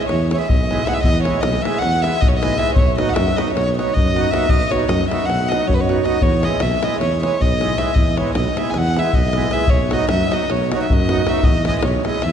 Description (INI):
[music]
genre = balkan folk, Balkan wedding band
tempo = 312 BPM (eighths)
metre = 9/8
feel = straight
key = E major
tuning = A4 = 439 Hz
[part]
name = warm violin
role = melody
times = 0.0-12.3 s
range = B4 to G#5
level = -21 LUFS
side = equal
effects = none
[part]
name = accordion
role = accompaniment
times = 0.0-12.2 s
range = F#3 to G#4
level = -24 LUFS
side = right 3 dB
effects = none
[part]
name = davul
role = percussion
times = 0.0-12.3 s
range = none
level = -20 LUFS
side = left 1 dB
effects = none
[part]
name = mellow tuba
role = bass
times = 0.1-12.3 s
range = B1 to F#2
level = -21 LUFS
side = equal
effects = none
[sound]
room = wet concert hall reverb, RT60 1.9 s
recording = heard from further back in the room, nothing above 10.6 kHz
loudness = -15 LUFS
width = side -8 dB against mid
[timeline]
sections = 0.0-12.3 A section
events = none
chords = 0.0 E; 2.8 B; 6.2 E; 9.7 B; 11.4 E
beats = 0.07 0.27 0.46 0.65 0.84 | 1.03 1.23 1.42 1.61 1.80 2.00 2.19 2.38 2.57 | 2.76 2.96 3.15 3.34 3.53 3.72 3.91 4.11 4.30 | 4.49 4.68 4.87 5.07 5.26 5.45 5.64 5.83 6.03 | 6.22 6.41 6.60 6.80 6.99 7.18 7.37 7.57 7.76 | 7.95 8.14 8.34 8.53 8.72 8.92 9.11 9.30 9.50 | 9.69 9.89 10.08 10.27 10.47 10.66 10.86 11.05 11.24 | 11.44 11.63 11.83 12.02 12.21